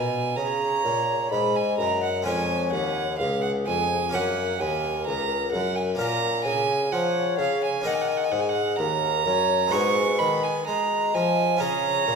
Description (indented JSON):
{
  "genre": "classical, baroque-style sonata movement with continuo",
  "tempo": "64 BPM",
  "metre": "4/4",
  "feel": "straight",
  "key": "unclear",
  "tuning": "A4 = 440 Hz",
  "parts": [
    { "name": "mellow baroque flute", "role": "melody", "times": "0.0-12.2 s", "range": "Ab4 to Eb5", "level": "-30 LUFS", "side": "left 9 dB", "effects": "none" },
    { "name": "rich violin", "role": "second line", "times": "0.0-12.2 s", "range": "E#5 to C#6", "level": "-25 LUFS", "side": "right 6 dB", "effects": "none" },
    { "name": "harpsichord", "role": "accompaniment", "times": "0.0-12.2 s", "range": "Db2 to Db5", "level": "-29 LUFS", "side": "left 2 dB", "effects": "none" },
    { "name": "mellow bassoon", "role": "bass", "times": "0.0-12.2 s", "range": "Db2 to G#3", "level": "-28 LUFS", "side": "right 1 dB", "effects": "none" }
  ],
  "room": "wet recital hall reverb, RT60 1.5 s",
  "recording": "minimal, uncompressed stereo recording",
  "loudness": "-22 LUFS",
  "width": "side -5 dB against mid",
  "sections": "0.0-12.2 A section",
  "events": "none",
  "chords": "0.0 Gb; 2.3 Db; 4.1 Gb; 6.0 A#m; 7.9 D#m; 9.7 G#m7; 11.6 C#"
}